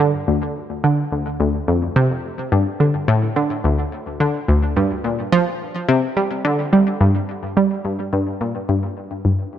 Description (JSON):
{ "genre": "ambient", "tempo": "107 BPM", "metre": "4/4", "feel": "straight", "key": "G minor", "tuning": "A4 = 440 Hz", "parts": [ { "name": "analog pluck", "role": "solo", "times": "0.0-9.4 s", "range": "D2 to G3", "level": "-17 LUFS", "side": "equal", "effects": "chorus, tape echo" } ], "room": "moderate plate reverb, RT60 2.9 s", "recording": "none", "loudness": "-17 LUFS", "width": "side -10 dB against mid", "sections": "0.0-9.2 A section", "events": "none", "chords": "none" }